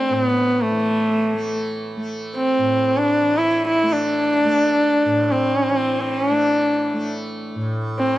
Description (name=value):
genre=indian classical, Hindustani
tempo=free time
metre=none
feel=none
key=A raga bhimpalasi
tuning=A4 = 440 Hz
part: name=clear sarangi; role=melody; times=0.0-8.2 s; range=A3 to E4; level=-18 LUFS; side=equal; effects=none
part: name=tanpura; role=drone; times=0.0-8.2 s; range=A2 to A3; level=-27 LUFS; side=equal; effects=none
room=light reverb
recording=dry, close 1970s-style studio recording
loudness=-17 LUFS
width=side -15 dB against mid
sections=0.0-8.2 A section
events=none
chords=none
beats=free time